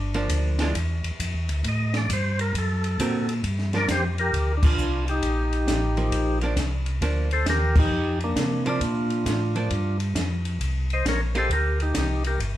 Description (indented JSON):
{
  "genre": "soul jazz organ trio",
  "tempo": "134 BPM",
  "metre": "4/4",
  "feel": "swing 66% on 8ths",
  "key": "G minor",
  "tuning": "A4 = 440 Hz",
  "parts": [
    { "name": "percussive tonewheel organ", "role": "melody", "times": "0.0-12.4 s", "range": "Bb3 to Eb5", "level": "-27 LUFS", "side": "equal", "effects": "slow rotary speaker" },
    { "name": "mellow tonewheel organ", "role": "bass", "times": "0.0-12.6 s", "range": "G1 to C3", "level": "-25 LUFS", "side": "equal", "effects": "slow rotary speaker" },
    { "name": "archtop guitar, miked and amplified", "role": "accompaniment", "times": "0.1-11.5 s", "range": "D3 to Bb4", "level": "-30 LUFS", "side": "right 3 dB", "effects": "none" },
    { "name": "compact cocktail drum kit", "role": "drums", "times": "0.1-12.5 s", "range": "crash cymbal, hi-hat, kick drum, ride cymbal, snare drum", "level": "-28 LUFS", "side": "equal", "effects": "none" }
  ],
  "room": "light reverb",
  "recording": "band playing live in one room",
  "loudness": "-22 LUFS",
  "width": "side -13 dB against mid",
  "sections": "0.0-3.4 A section; 3.4-12.6 B section",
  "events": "tonewheel organ solo 0.0-3.4; band accent 4.6, 7.7",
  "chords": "0.0 Gm7; 0.8 Dmadd9; 1.6 Gmadd9; 2.5 D7b13; 3.4 Gm7; 10.6 Cm7"
}